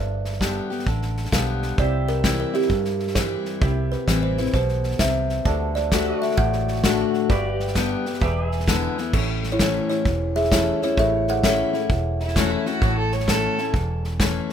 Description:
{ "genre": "honky-tonk and classic country", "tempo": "130 BPM", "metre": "4/4", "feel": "swing 65% on 8ths", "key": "G major, A major from 9.1 s", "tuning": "A4 = 440 Hz", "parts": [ { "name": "kalimba", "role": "melody", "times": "0.0-12.2 s", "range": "C#4 to A5", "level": "-26 LUFS", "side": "right 2 dB", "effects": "none" }, { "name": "picked steel-string acoustic guitar", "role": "accompaniment", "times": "0.0-14.5 s", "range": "E2 to G4", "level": "-26 LUFS", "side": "left 7 dB", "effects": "none" }, { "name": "pedal steel guitar", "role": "sustained chords", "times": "0.0-9.1 s", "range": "F#4 to E5", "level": "-31 LUFS", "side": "equal", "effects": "none" }, { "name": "vintage muted fingered electric bass", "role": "bass", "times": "0.0-14.4 s", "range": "E1 to G2", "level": "-26 LUFS", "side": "right 1 dB", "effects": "none" }, { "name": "unplugged drum kit", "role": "drums", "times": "0.2-14.5 s", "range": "crash cymbal, hi-hat, kick drum, snare drum", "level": "-24 LUFS", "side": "equal", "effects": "none" }, { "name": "clear baby grand piano", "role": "accompaniment", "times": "1.8-14.5 s", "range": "E4 to E5", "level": "-35 LUFS", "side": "right 6 dB", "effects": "none" }, { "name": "dark fiddle", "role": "second line", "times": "12.2-13.6 s", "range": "E4 to C#5", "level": "-27 LUFS", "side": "right 4 dB", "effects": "none" } ], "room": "little or no reverb", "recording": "minimal, uncompressed stereo recording", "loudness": "-20 LUFS", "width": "side -8 dB against mid", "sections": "0.0-9.1 A section; 9.1-14.5 B section", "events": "kalimba solo 0.0-9.1", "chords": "0.0 G; 1.8 C; 5.5 D; 7.3 G; 8.2 E7; 9.1 A" }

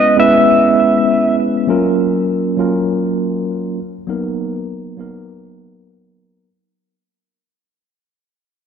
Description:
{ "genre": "chillout", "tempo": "100 BPM", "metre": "4/4", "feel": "swing 56% on 16ths", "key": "F# major", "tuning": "A4 = 439 Hz", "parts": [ { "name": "pedal steel guitar", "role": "melody", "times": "0.0-1.3 s", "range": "D#5 to E5", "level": "-13 LUFS", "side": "right 1 dB", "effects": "digital delay" }, { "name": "mellow tine electric piano", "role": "accompaniment", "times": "0.0-6.5 s", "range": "F#3 to B4", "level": "-15 LUFS", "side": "equal", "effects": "auto-pan, low-pass filter, ping-pong delay" } ], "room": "wet lush hall reverb, RT60 1.6 s", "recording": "dark, warm production", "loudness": "-13 LUFS", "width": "side -7 dB against mid", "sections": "0.0-1.7 A section; 1.7-6.5 B section", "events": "fade-out 1.7-6.5; filter sweep on tine electric piano 1.7-6.5", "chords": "0.0 C#m7; 1.7 F#maj7; 3.8 Bmaj7" }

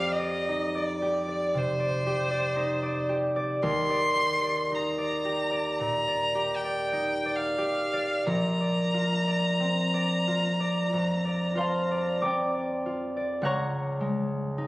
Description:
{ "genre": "classical, impressionist duo for violin and harp", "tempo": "43-58 BPM", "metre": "4/4", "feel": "rubato", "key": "Bb major", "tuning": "A4 = 441 Hz", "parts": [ { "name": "rich violin", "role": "melody", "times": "0.0-12.2 s", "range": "C5 to C6", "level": "-29 LUFS", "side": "equal", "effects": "none" }, { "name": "concert harp", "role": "accompaniment", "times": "0.0-14.7 s", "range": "Bb1 to D6", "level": "-26 LUFS", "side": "equal", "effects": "none" } ], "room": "moderate concert hall reverb, RT60 2.1 s", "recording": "recorded on a phone in the room, club reverb, compression", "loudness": "-25 LUFS", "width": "side -20 dB against mid", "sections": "0.0-13.5 A section; 13.5-14.7 B section", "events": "none", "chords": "0.0 Fsus2; 3.6 Ebmaj7; 8.3 Bbmaj9; 13.5 Db6" }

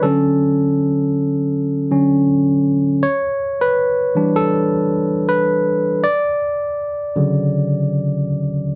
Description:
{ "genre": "R&B", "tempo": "80 BPM", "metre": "4/4", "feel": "swing 57% on 16ths", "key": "unclear", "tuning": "A4 = 439 Hz", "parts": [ { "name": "barky tine electric piano", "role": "solo", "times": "0.0-8.8 s", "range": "C#3 to D5", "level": "-18 LUFS", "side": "equal", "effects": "overdrive" } ], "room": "wet studio reverb, RT60 0.7 s", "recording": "dark, warm production", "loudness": "-18 LUFS", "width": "mono", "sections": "0.0-8.8 A section", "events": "tine electric piano solo 0.0-8.8", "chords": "0.0 Dmaj7; 3.0 Em7; 6.0 Dmaj7" }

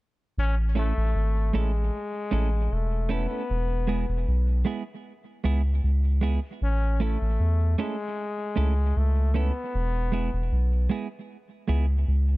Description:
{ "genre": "roots reggae", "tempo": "77 BPM", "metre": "4/4", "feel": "straight", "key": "A major", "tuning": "A4 = 440 Hz", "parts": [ { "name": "clear trombone", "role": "melody", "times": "0.4-10.9 s", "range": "G#3 to C#4", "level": "-32 LUFS", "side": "left 3 dB", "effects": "tape echo" }, { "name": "soft dub sub bass", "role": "bass", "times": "0.4-12.4 s", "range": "E1 to E2", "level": "-23 LUFS", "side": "equal", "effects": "none" }, { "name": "clean electric guitar", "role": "accompaniment", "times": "0.8-11.9 s", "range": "G#3 to A4", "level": "-31 LUFS", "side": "right 6 dB", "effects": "tape echo" } ], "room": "studio ambience", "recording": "none", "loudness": "-23 LUFS", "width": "side -19 dB against mid", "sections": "0.4-12.4 A section", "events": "none", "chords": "0.4 A; 3.5 E; 6.6 A; 9.7 E" }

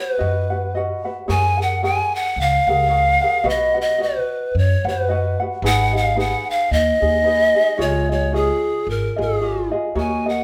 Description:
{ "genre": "Hawaiian", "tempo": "111 BPM", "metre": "4/4", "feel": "swing 57% on 8ths", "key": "F# major", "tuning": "A4 = 440 Hz", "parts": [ { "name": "breathy pan flute", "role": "melody", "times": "0.0-10.4 s", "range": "G#4 to G#5", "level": "-21 LUFS", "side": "equal", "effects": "none" }, { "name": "ukulele", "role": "accompaniment", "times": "0.0-10.4 s", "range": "D#4 to F#5", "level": "-27 LUFS", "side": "equal", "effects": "none" }, { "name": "upright bass", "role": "bass", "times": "0.2-10.4 s", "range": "G#1 to F#2", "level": "-24 LUFS", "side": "equal", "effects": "none" } ], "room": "wet large studio reverb, RT60 0.9 s", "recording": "band playing live in one room", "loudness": "-19 LUFS", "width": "mono", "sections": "0.0-1.3 A section; 1.3-10.4 B section", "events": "none", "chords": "0.0 B; 1.3 F#add9; 3.4 B; 5.6 G#m; 7.8 C#add9" }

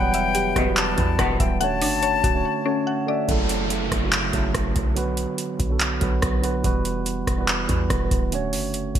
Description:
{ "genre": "hip hop, trap", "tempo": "143 BPM", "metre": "4/4", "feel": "half-time", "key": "F# phrygian", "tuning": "A4 = 443 Hz", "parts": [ { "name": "breathy silver concert flute", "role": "second line", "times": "0.0-2.8 s", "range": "G5 to A5", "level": "-26 LUFS", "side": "left 8 dB", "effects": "ping-pong delay" }, { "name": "mellow tine electric piano", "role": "accompaniment", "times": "0.0-9.0 s", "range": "C#3 to F#5", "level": "-26 LUFS", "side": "right 5 dB", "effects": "none" }, { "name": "mallet-like synth pluck", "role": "arpeggios", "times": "0.0-3.3 s", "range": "G3 to F#5", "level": "-26 LUFS", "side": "left 5 dB", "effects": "chorus, ping-pong delay" }, { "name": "warm 808-style bass", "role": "bass", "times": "0.0-9.0 s", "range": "D1 to E2", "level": "-27 LUFS", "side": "equal", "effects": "none" }, { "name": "booming analog drum machine", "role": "drums", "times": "0.1-9.0 s", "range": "handclaps, hi-hat, kick drum, rim click", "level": "-23 LUFS", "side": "equal", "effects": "gated reverb" }, { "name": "bright symphonic string section", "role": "stabs", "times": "0.6-1.4 s", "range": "B1 to B2", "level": "-29 LUFS", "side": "equal", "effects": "none" }, { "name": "downlifter", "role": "sound effects", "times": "3.3-6.6 s", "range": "none", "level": "-32 LUFS", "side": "equal", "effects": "none" } ], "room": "light reverb", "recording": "bright 1980s-style digital production", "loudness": "-20 LUFS", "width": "side -10 dB against mid", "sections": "0.0-3.3 A section; 3.3-9.0 B section", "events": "break 2.4-3.3", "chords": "0.0 Emadd9; 1.6 Dmaj7; 3.3 F#m7; 5.0 Bm; 6.6 Emadd9; 8.3 Dmaj7" }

